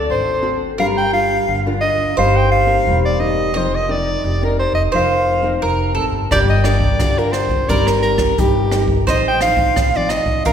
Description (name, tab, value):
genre	samba and choro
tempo	87 BPM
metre	4/4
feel	straight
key	unclear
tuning	A4 = 440 Hz
part	bowl-back mandolin	second line	0.0-10.5 s	G4 to Eb5	-22 LUFS	right 2 dB	none
part	nylon-string guitar	accompaniment	0.0-10.5 s	A2 to Bb4	-22 LUFS	left 2 dB	none
part	breathy soprano saxophone	melody	0.1-10.5 s	G4 to G5	-18 LUFS	right 1 dB	none
part	upright bass	bass	0.1-10.5 s	E1 to Bb1	-20 LUFS	equal	none
part	jazz brush drum kit	drums	6.3-10.5 s	hi-hat, kick drum, rim click	-20 LUFS	equal	none
room	wet concert hall reverb, RT60 2.0 s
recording	recorded in a church or concert hall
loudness	-14 LUFS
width	side -8 dB against mid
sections	0.0-10.5 A section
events	none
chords	0.0 D7 (rootless); 0.8 Gm7; 2.2 Eb6/G; 3.5 F7sus4; 6.3 Gm7; 7.7 Cm7/G; 9.1 F7/A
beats	0.09 | 0.78 1.48 2.17 2.86 | 3.55 4.24 4.93 5.62 | 6.31 7.00 7.69 8.39 | 9.08 9.77 10.46